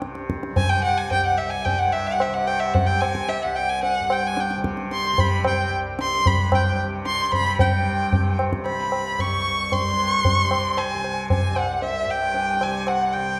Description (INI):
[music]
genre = indian classical, Hindustani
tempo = 112 BPM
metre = 4/4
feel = straight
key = unclear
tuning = A4 = 440 Hz
[part]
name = tanpura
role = drone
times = 0.0-13.4 s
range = C2 to C3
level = -32 LUFS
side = equal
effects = none
[part]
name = tabla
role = percussion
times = 0.0-13.1 s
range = none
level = -26 LUFS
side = equal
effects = none
[part]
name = rich violin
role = melody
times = 0.6-13.4 s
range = E5-21c to Db6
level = -25 LUFS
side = equal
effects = none
[part]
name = pan flute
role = second line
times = 0.7-13.4 s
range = E5-23c to Db6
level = -32 LUFS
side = equal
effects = none
[sound]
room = wet recital hall reverb, RT60 1.6 s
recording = dark, warm production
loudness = -22 LUFS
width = mono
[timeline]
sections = 0.0-7.6 A section; 7.6-13.4 B section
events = speeding up 0.0-13.4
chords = none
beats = 0.02 0.57 | 1.12 1.67 2.21 2.75 | 3.30 3.84 4.38 4.92 | 5.46 5.99 6.53 7.07 | 7.60 8.13 8.66 9.19 | 9.72 10.25 10.78 11.30 | 11.83 12.35 12.87 13.39